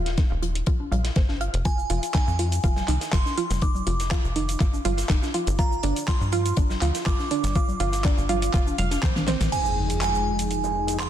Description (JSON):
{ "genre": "progressive house", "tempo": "122 BPM", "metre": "4/4", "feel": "straight", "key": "F dorian", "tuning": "A4 = 440 Hz", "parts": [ { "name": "tight sequencer bass", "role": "bass", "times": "0.0-9.5 s", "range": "Eb1 to G2", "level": "-26 LUFS", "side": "equal", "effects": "tube saturation, sidechain pumping" }, { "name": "pop drum kit", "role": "drums", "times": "0.1-11.1 s", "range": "crash cymbal, handclaps, hi-hat, shaker, snare drum", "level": "-31 LUFS", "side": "equal", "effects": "sidechain pumping on hats, sidechain pumping on perc, sidechain pumping on cymbals" }, { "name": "tight metal drum kit", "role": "drums", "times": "0.1-11.1 s", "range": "hi-hat, snare drum", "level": "-39 LUFS", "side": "left 3 dB", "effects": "sidechain pumping on hats, high-pass filter on hats, low-pass filter on hats, high-pass filter on snare, low-pass filter on snare, high-pass filter on room, low-pass filter on room" }, { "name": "analog pluck", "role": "arpeggios", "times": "0.2-9.4 s", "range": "C4 to F5", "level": "-29 LUFS", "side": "right 3 dB", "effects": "chorus, sidechain pumping, tape echo" }, { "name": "electronic kick drum", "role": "drums", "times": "0.2-9.1 s", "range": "none", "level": "-22 LUFS", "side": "equal", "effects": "overdrive" }, { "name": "congas", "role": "percussion", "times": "0.8-9.3 s", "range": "none", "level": "-33 LUFS", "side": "left 3 dB", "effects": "sidechain pumping on perc" }, { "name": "glassy synth bell", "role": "melody", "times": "1.7-11.1 s", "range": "Ab5 to D6", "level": "-30 LUFS", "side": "right 3 dB", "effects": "chorus, vintage 12-bit sampler grit, ping-pong delay" }, { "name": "warm analog pad", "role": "sustained chords", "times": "9.5-11.1 s", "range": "F2 to Ab4", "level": "-28 LUFS", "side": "equal", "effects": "chorus, sidechain pumping" }, { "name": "impact", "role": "sound effects", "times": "9.5-11.1 s", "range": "none", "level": "-29 LUFS", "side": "left 1 dB", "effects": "none" } ], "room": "light reverb", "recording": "dense, heavily limited modern master", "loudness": "-21 LUFS", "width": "side -10 dB against mid", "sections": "0.0-9.5 A section; 9.5-11.1 B section", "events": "filter sweep on synth arpeggio sound 0.0-9.5; drum fill 9.0-9.5; impact 9.5-11.1", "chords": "0.0 Eb; 1.7 Fm7; 5.6 G7(no3); 9.5 Fm7", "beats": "0.18 0.67 1.16 | 1.65 2.15 2.64 3.13 | 3.62 4.11 4.60 5.10 | 5.59 6.08 6.57 7.06 | 7.55 8.05 8.54 9.03 | 9.52 10.01 10.51 11.00" }